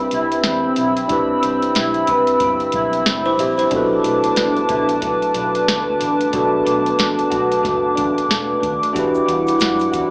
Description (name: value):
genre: indie pop, bedroom pop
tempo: 92 BPM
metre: 4/4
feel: swing 60% on 16ths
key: unclear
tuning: A4 = 438 Hz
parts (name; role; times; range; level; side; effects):
- electric guitar through a small old amp; accompaniment; 0.0-10.1 s; B2 to B4; -22 LUFS; equal; analog chorus, warbly pitch drift, slapback echo
- overdriven tine electric piano; accompaniment; 0.0-10.1 s; D4 to E5; -21 LUFS; equal; cassette tape
- hollow soft pad; sustained chords; 0.0-10.1 s; C4 to E6; -19 LUFS; equal; chorus
- vintage muted fingered electric bass; bass; 0.1-10.1 s; E1 to F#2; -32 LUFS; equal; none
- soft vintage rhythm box; drums; 0.1-10.1 s; hi-hat, kick drum, snare drum; -22 LUFS; equal; none
- buzzing kalimba; second line; 3.3-3.9 s; E4 to E5; -22 LUFS; equal; lush chorus, tape echo, slapback echo
- egg shaker; percussion; 9.0-10.1 s; none; -44 LUFS; equal; none
room: moderate club reverb, RT60 0.5 s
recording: live gig heard through the venue's PA, club reverb, small speaker sound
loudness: -15 LUFS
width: side -37 dB against mid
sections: 0.0-10.1 A section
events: none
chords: 0.0 Cmaj7; 3.7 Bm7; 9.0 Em9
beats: 0.45 | 1.11 1.76 2.41 3.07 | 3.72 4.37 5.03 5.68 | 6.34 6.99 7.64 8.30 | 8.95 9.61